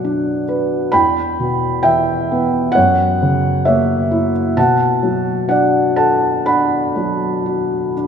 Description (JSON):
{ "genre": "classical, lyrical solo piano", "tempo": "59-67 BPM", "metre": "4/4", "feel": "rubato", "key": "B minor", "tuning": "A4 = 440 Hz", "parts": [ { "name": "felt-muted upright piano", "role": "solo", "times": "0.0-8.1 s", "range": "E2 to B5", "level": "-14 LUFS", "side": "equal", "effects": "none" } ], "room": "wet church reverb, RT60 3.0 s", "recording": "recorded in a church or concert hall", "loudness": "-14 LUFS", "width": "side -7 dB against mid", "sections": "0.0-8.1 A section", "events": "none", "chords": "0.0 Bm; 0.9 Em; 2.8 F#7; 4.6 Bm7" }